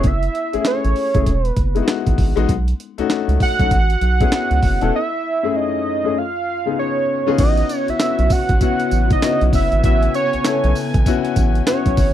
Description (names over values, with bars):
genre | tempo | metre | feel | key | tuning
R&B, new jack swing | 98 BPM | 4/4 | swing 62% on 16ths | unclear | A4 = 439 Hz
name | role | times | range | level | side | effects
wide unison lead | melody | 0.0-12.1 s | C#5 to F#5 | -20 LUFS | right 3 dB | slapback echo
warm baby grand piano | accompaniment | 0.0-12.1 s | F#2 to A4 | -22 LUFS | left 11 dB | none
round analog bass | bass | 0.0-12.1 s | E1 to C#2 | -18 LUFS | right 1 dB | none
breakbeat sampler-style drum kit | drums | 0.0-12.1 s | crash cymbal, handclaps, hi-hat, kick drum, snare drum, tambourine | -19 LUFS | right 1 dB | none
warm studio string section | sustained chords | 7.4-12.1 s | C#3 to G#5 | -28 LUFS | right 2 dB | none
room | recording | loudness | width
little or no reverb | dry, close 1970s-style studio recording | -15 LUFS | side -11 dB against mid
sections
0.0-7.4 A section; 7.4-12.1 B section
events
break 4.9-7.4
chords
0.0 F#m7; 1.3 Emaj9; 2.5 B9; 3.7 Amaj9; 4.9 F#m7; 6.2 C#7; 7.4 A69